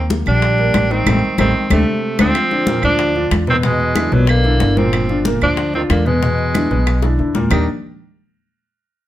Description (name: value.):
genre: Afro-Cuban jazz.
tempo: 186 BPM.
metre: 4/4.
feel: straight.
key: unclear.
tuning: A4 = 441 Hz.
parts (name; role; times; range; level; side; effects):
clear tenor saxophone; melody; 0.0-7.7 s; Eb3 to D4; -19 LUFS; right 1 dB; none.
breathy tenor saxophone; second line; 0.0-7.7 s; Bb2 to G3; -26 LUFS; right 4 dB; none.
clear grand piano; accompaniment; 0.0-7.7 s; Bb2 to B4; -19 LUFS; left 1 dB; none.
upright bass; bass; 0.0-7.7 s; G1 to E2; -18 LUFS; equal; none.
bongos; percussion; 0.1-7.6 s; none; -26 LUFS; left 5 dB; none.
congas; percussion; 0.1-7.6 s; none; -22 LUFS; left 2 dB; none.
claves; percussion; 0.3-7.6 s; none; -26 LUFS; right 5 dB; none.
room: light reverb.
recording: none.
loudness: -13 LUFS.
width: side -13 dB against mid.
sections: 0.0-2.4 A section; 2.4-7.5 B section; 7.5-8.8 C section.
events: band accent 1.1-2.4; drum fill 7.0-7.5.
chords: 0.0 Ebmaj7; 1.1 Am7b5; 1.7 D5; 2.4 Dm13; 3.6 E7; 4.9 Gm7; 6.2 E7; 7.5 Ebmaj7.